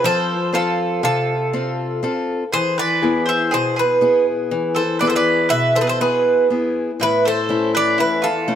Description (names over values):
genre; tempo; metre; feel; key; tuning
greek folk, Greek bouzouki band; 121 BPM (eighths); 9/8; straight; unclear; A4 = 440 Hz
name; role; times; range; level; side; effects
Greek bouzouki; melody; 0.0-8.6 s; A4 to E5; -19 LUFS; right 2 dB; none
mandolin; second line; 0.0-8.6 s; E4 to C5; -22 LUFS; equal; none
picked acoustic archtop guitar; accompaniment; 0.0-8.6 s; E2 to A4; -21 LUFS; left 2 dB; none
room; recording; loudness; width
moderate plate reverb, RT60 3.3 s; none; -16 LUFS; side -9 dB against mid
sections
0.0-8.6 A section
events
none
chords
0.0 F; 2.5 E; 7.0 A